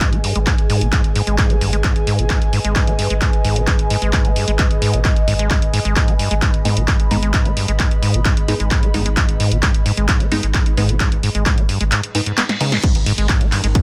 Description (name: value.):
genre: driving peak-time techno.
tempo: 131 BPM.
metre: 4/4.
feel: straight.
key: G# minor.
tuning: A4 = 440 Hz.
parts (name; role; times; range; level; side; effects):
acid bass, saw; riff; 0.0-13.8 s; G2 to B3; -24 LUFS; equal; sidechain pumping.
electronic kick drum; drums; 0.0-13.8 s; none; -19 LUFS; equal; overdrive.
punchy analog drum machine; drums; 0.0-13.8 s; crash cymbal, handclaps, hi-hat, ride cymbal, snare drum; -24 LUFS; equal; none.
warbly tape-like pad; texture; 0.0-12.9 s; G#4 to B5; -30 LUFS; equal; chorus, built-in reverb, phaser, sidechain pumping.
saturated sub bass; bass; 0.1-13.7 s; G#1; -23 LUFS; equal; sidechain pumping, low-pass filter.
filtered dub chord stab; stabs; 6.7-12.7 s; G#3 to D#4; -28 LUFS; equal; phaser, analog chorus, vintage 12-bit sampler grit, sidechain pumping, dub echo.
reverse cymbal and impact; sound effects; 12.1-13.8 s; none; -32 LUFS; equal; none.
metallic inharmonic drone; drone; 13.2-13.8 s; G#2 to D#3; -34 LUFS; equal; none.
room: little or no reverb.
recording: none.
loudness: -17 LUFS.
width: mono.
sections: 0.0-12.8 A section.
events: kick drops out 11.9-12.8; reverse cymbal 12.1-12.8; drum fill 12.4-12.8; impact 12.8-13.8.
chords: 0.0 G#m; 12.8 G#5.